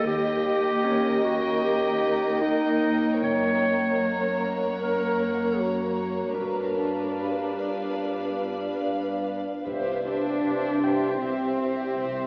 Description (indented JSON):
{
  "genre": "cinematic, suspense film score",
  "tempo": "75 BPM",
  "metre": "4/4",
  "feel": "uneven beats",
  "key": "unclear",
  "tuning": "A4 = 440 Hz",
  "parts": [
    { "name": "dark chamber violin section", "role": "melody", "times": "0.0-12.3 s", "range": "E5 to G5", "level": "-42 LUFS", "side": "equal", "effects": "none" },
    { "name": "clear clarinet", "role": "second line", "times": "0.0-9.3 s", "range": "Eb4 to C#5", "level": "-29 LUFS", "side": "equal", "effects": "none" },
    { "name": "granular cloud pad", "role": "sustained chords", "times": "0.0-12.3 s", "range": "Bb4 to C6", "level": "-33 LUFS", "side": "equal", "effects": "built-in reverb" },
    { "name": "warm chamber double bass section", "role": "bass", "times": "0.0-12.3 s", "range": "F#1 to Eb2", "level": "-45 LUFS", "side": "equal", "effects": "none" },
    { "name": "bright concert grand piano", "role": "texture", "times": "0.0-12.3 s", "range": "C#4 to B5", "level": "-41 LUFS", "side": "equal", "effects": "none" },
    { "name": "warm chamber violin section", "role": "second line", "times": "0.1-12.3 s", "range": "B4 to Eb5", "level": "-35 LUFS", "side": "equal", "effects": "none" },
    { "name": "warm chamber viola section", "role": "accompaniment", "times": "0.1-12.3 s", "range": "Bb3 to G4", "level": "-33 LUFS", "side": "equal", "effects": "none" },
    { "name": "dark chamber cello section", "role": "bass", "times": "0.1-12.3 s", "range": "Eb2 to D4", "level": "-34 LUFS", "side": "equal", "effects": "none" },
    { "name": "taiko ensemble", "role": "drums", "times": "9.7-11.2 s", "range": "none", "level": "-46 LUFS", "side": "equal", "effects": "none" }
  ],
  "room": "moderate scoring stage reverb, RT60 1.4 s",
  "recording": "worn, warbling old tape, cassette tape, warbly pitch drift, AM radio sound",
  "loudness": "-26 LUFS",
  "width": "mono",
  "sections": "0.0-9.7 A section; 9.7-12.3 B section",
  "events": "none",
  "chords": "0.0 Eb; 3.2 F#; 6.4 G7; 9.7 C",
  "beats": "| 0.05 0.84 1.63 2.42 | 3.22 4.00 4.79 5.58 | 6.40 7.22 8.04 8.86 | 9.67 10.46 11.24 12.02"
}